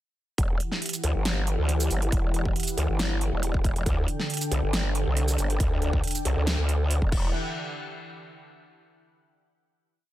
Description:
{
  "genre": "heavy wobble dubstep",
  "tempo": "138 BPM",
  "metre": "4/4",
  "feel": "half-time",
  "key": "E minor",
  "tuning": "A4 = 440 Hz",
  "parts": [
    { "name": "lush unison pad", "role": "sustained chords", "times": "0.4-7.3 s", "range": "D3 to G5", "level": "-33 LUFS", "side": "equal", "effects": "chorus, sidechain pumping" },
    { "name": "growl bass", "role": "bass", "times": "0.4-7.3 s", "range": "E1 to D2", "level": "-25 LUFS", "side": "equal", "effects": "chorus, overdrive" },
    { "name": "big-room dance drum kit", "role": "drums", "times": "0.4-7.2 s", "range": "crash cymbal, hi-hat, shaker, snare drum", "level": "-31 LUFS", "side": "right 1 dB", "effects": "none" },
    { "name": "electronic kick drum", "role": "drums", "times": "0.4-7.2 s", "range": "none", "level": "-26 LUFS", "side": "equal", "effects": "none" }
  ],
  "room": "digital ambience",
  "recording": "dense, heavily limited modern master",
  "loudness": "-24 LUFS",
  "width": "side -14 dB against mid",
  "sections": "0.4-7.3 drop; 7.3-9.1 final hit",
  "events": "drop 0.4-7.3",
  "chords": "0.4 Emadd9; 3.9 Dsus4; 7.1 Emadd9; 7.3 N.C.",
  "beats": "| 0.38 0.82 1.25 1.69 | 2.12 2.56 2.99 3.43 | 3.86 4.30 4.73 5.17 | 5.60 6.04 6.47 6.91"
}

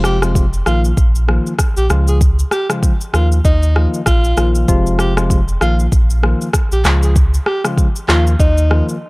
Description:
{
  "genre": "afrobeats",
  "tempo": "97 BPM",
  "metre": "4/4",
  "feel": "swing 58% on 16ths",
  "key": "Eb mixolydian",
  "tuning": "A4 = 436 Hz",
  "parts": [
    { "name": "breathy alto saxophone", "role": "melody", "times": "0.0-8.9 s", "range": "Eb4 to Ab4", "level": "-22 LUFS", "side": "equal", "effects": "none" },
    { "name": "tine electric piano", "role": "accompaniment", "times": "0.0-8.9 s", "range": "C3 to F4", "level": "-20 LUFS", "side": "left 2 dB", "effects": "none" },
    { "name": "sub bass with octave", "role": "bass", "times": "0.0-8.8 s", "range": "F1 to Eb2", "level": "-14 LUFS", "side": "equal", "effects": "none" },
    { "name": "afro-pop drum kit", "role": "drums", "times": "0.0-9.0 s", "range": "handclaps, kick drum, rim click, shaker", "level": "-16 LUFS", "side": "equal", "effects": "none" }
  ],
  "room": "little or no reverb",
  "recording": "dark, warm production",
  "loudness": "-12 LUFS",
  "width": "side -24 dB against mid",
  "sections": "0.0-9.1 A section",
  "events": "none",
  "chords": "0.0 Fm; 0.7 Bbsus4; 1.9 Db; 3.1 Ebsus2; 4.7 Fm; 5.6 Bbsus4; 6.8 Db; 8.1 Ebsus2",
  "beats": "0.35 0.97 1.59 | 2.21 2.83 3.45 4.07 | 4.68 5.30 5.92 6.54 | 7.16 7.78 8.39"
}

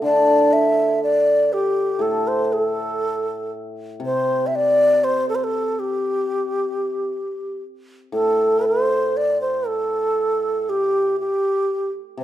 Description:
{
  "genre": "chinese traditional, Chinese chamber ensemble",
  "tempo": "59 BPM",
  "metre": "4/4",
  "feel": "rubato",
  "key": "unclear",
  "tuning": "A4 = 440 Hz",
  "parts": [
    { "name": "breathy bright xiao", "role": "melody", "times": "0.0-12.2 s", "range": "G4 to E5", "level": "-19 LUFS", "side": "equal", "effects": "none" },
    { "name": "hammered dulcimer", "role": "accompaniment", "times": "0.0-12.2 s", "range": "A2 to A4", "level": "-24 LUFS", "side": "equal", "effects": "none" }
  ],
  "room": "moderate recital hall reverb, RT60 1.2 s",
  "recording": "minimal, uncompressed stereo recording",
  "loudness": "-18 LUFS",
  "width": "side -12 dB against mid",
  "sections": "0.0-8.1 A section; 8.1-12.2 B section",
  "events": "none",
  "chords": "none",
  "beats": "| 0.04 1.03 2.01 3.01 | 4.02 5.03 6.05 7.10 | 8.14 9.17 10.18 11.20 | 12.20"
}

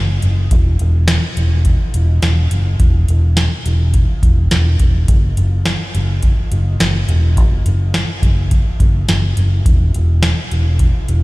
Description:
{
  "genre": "dream pop",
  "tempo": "105 BPM",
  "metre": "4/4",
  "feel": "straight",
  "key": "unclear",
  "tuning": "A4 = 440 Hz",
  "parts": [
    { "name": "vintage muted fingered electric bass", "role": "bass", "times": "0.0-11.2 s", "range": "E1 to F#1", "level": "-14 LUFS", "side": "equal", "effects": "none" },
    { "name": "booming analog drum machine", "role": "drums", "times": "0.2-11.2 s", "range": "hi-hat, kick drum, snare drum", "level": "-16 LUFS", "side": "equal", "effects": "none" }
  ],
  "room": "little or no reverb",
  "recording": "played on a big sound system in a bare room, stone room reverb",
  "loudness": "-12 LUFS",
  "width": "side -21 dB against mid",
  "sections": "0.0-11.2 A section",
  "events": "none",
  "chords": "none",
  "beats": "| 0.51 1.08 1.66 2.23 | 2.80 3.37 3.94 4.51 | 5.08 5.66 6.23 6.80 | 7.37 7.94 8.51 9.09 | 9.66 10.23 10.80"
}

